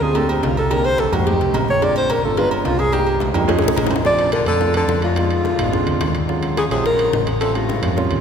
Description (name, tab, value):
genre	Afro-Cuban jazz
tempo	215 BPM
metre	4/4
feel	straight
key	Bb major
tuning	A4 = 440 Hz
part	breathy alto saxophone	melody	0.0-8.1 s	C4 to D5	-20 LUFS	left 1 dB	none
part	warm grand piano	accompaniment	0.0-8.2 s	Gb3 to G#4	-23 LUFS	right 4 dB	none
part	hollow-body short-scale fingered electric bass	bass	0.0-8.2 s	G1 to F2	-22 LUFS	equal	none
part	congas	percussion	0.0-8.2 s	none	-28 LUFS	left 2 dB	none
part	agogo bells and timbales	percussion	0.1-8.2 s	none	-26 LUFS	right 1 dB	none
part	cowbell and bongos	percussion	0.1-8.0 s	none	-27 LUFS	left 4 dB	none
part	breathy baritone saxophone	second line	4.0-8.1 s	Ab2 to F3	-26 LUFS	left 4 dB	none
room	wet cathedral reverb, RT60 5.7 s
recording	recorded in a church or concert hall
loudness	-16 LUFS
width	side -7 dB against mid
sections	0.0-4.1 A section; 4.1-8.2 B section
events	alto saxophone solo 0.0-4.1; drum fill 3.4-4.1, 7.7-8.2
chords	0.0 Dm7; 0.7 Cm9; 1.3 F7; 1.8 Bbmaj7; 2.4 G7b9; 2.9 Cm7; 3.5 F7alt; 4.1 Bbmaj7; 5.2 Fm7b5; 5.7 Bb7; 6.3 Ebm11; 7.4 A7alt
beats	0.15 0.43 | 0.71 0.99 1.27 1.54 | 1.82 2.10 2.38 2.66 | 2.94 3.21 3.49 3.77 | 4.05 4.33 4.61 4.89 | 5.17 5.45 5.73 6.01 | 6.29 6.57 6.85 7.13 | 7.41 7.69 7.97